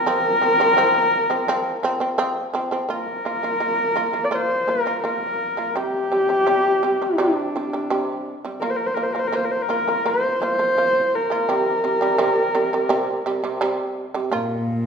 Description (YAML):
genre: mongolian traditional, Mongolian folk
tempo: 84 BPM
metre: 4/4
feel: straight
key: Bb gong mode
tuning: A4 = 437 Hz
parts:
  - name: warm horsehead fiddle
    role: melody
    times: 0.0-13.6 s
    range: D4 to D5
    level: -20 LUFS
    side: left 1 dB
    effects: none
  - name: shamisen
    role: arpeggios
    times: 0.0-14.8 s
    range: C3 to F4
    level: -24 LUFS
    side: right 2 dB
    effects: none
  - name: rich cello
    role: drone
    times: 14.3-14.9 s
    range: Bb2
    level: -23 LUFS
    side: equal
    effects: none
room: wet recital hall reverb, RT60 1.8 s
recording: minimal, uncompressed stereo recording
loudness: -19 LUFS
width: side -6 dB against mid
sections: 0.0-2.9 A section; 2.9-14.3 B section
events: none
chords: 0.0 F5; 2.9 Bb5; 5.8 C5; 8.6 Bb5; 11.5 C5; 14.3 Bb5